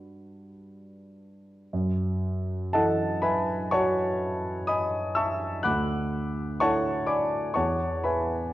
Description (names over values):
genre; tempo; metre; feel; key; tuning
classical, impressionist solo piano; 48-64 BPM; 4/4; rubato; unclear; A4 = 441 Hz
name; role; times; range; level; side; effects
warm concert grand piano; solo; 0.0-8.5 s; D2 to F#6; -25 LUFS; equal; none
room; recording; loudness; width
wet recital hall reverb, RT60 1.6 s; worn, warbling old tape, cassette tape, warbly pitch drift; -24 LUFS; side -15 dB against mid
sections
0.0-1.7 A section; 1.7-8.5 B section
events
none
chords
0.0 Gmaj7; 1.7 F#m7; 5.7 D69; 7.6 Eadd9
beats
0.53 | 1.71 2.74 3.72 4.69 | 5.65 6.62 7.57